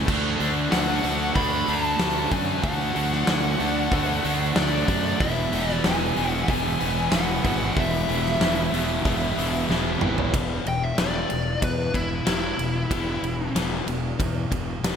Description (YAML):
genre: hard rock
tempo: 94 BPM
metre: 4/4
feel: straight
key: E mixolydian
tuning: A4 = 440 Hz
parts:
  - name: cranked stack guitar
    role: riff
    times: 0.0-15.0 s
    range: E2 to D4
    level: -29 LUFS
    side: left 8 dB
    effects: overdrive, wide subtle chorus
  - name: heavy high-gain guitar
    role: riff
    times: 0.0-10.3 s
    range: D3 to F#4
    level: -32 LUFS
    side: equal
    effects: distortion
  - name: overdriven semi-hollow guitar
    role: riff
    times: 0.0-10.3 s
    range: E2 to D4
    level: -28 LUFS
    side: right 10 dB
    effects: none
  - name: fuzz fingered electric bass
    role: bass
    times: 0.0-15.0 s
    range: E1 to F#2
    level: -28 LUFS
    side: equal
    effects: overdrive
  - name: huge arena drum kit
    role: drums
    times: 0.1-15.0 s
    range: crash cymbal, hi-hat, kick drum, ride cymbal, snare drum, toms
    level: -26 LUFS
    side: equal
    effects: gated reverb
  - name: biting lead guitar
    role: melody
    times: 0.7-13.5 s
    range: E4 to B5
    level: -28 LUFS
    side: left 1 dB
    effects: overdrive, ping-pong delay
room: moderate lush hall reverb, RT60 2.6 s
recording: bright 1980s-style digital production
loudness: -21 LUFS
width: side -7 dB against mid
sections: 0.0-10.3 A section; 10.3-15.0 B section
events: drum fill 9.7-10.3; lead electric guitar solo 10.3-15.0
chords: 0.1 D; 5.2 E; 10.3 E5